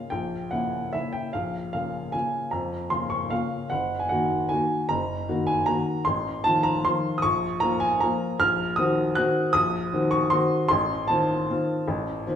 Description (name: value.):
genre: classical, piano waltz.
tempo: 153 BPM.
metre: 3/4.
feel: rubato.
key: Bb minor.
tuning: A4 = 440 Hz.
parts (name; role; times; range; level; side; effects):
warm upright piano; solo; 0.0-12.4 s; Gb1 to Gb6; -23 LUFS; equal; none.
room: wet large studio reverb, RT60 1.4 s.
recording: heard from further back in the room.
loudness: -22 LUFS.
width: side -8 dB against mid.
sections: 0.0-12.4 A section.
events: none.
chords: 0.1 Bbdim7; 1.3 Bbm; 3.7 Ebm/Gb; 6.1 F7/A; 7.2 Bbm; 8.4 Cm7b5/Bb; 10.7 F7/A.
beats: | 0.13 0.53 0.94 | 1.34 1.74 2.14 | 2.53 2.91 3.31 | 3.71 4.10 4.50 | 4.89 5.28 5.67 | 6.06 6.45 6.85 | 7.24 7.62 8.02 | 8.40 8.78 9.17 | 9.55 9.93 10.32 | 10.71 11.09 11.49 | 11.88 12.28.